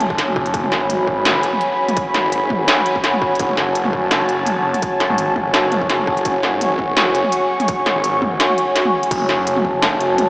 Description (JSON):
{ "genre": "half-time drum and bass", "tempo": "168 BPM", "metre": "4/4", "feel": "swing 55% on 16ths, half-time", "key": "F# minor", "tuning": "A4 = 439 Hz", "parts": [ { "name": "dark analog pad", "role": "sustained chords", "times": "0.0-10.3 s", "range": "F#4 to C#6", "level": "-17 LUFS", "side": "equal", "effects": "chorus, sidechain pumping" }, { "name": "phased detuned saw bass", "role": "bass", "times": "0.0-10.3 s", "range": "F#1 to G#1", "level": "-24 LUFS", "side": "equal", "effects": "phaser" }, { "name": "industrial drum kit", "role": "drums", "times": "0.0-10.3 s", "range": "crash cymbal, hi-hat, snare drum, toms", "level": "-19 LUFS", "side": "equal", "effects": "studio reverb" }, { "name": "electronic kick drum", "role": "drums", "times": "0.1-9.7 s", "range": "none", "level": "-28 LUFS", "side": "equal", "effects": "distortion, studio reverb" } ], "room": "wet huge ambient reverb, RT60 9.1 s", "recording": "dreamy mix soaked in reverb, small speaker sound", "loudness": "-15 LUFS", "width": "side -23 dB against mid", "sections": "0.0-10.3 A section", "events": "none", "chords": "0.0 F#m" }